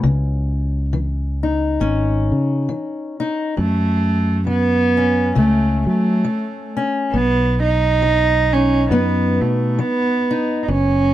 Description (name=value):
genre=acoustic folk duo or small band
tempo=68 BPM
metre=4/4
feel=swing 57% on 8ths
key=unclear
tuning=A4 = 439 Hz
part: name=fingerpicked steel-string acoustic guitar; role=accompaniment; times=0.0-11.1 s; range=F#2 to D#4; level=-21 LUFS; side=left 3 dB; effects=none
part: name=fingered electric bass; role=bass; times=0.0-11.1 s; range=F#1 to F#3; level=-19 LUFS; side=equal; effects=none
part: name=warm cello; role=second line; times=3.6-11.1 s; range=A3 to D#4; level=-18 LUFS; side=right 3 dB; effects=none
room=light reverb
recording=dark, warm production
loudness=-16 LUFS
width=side -13 dB against mid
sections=0.0-11.1 A section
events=cello solo 0.0-11.1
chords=0.0 C#madd9; 3.6 F#m; 7.1 B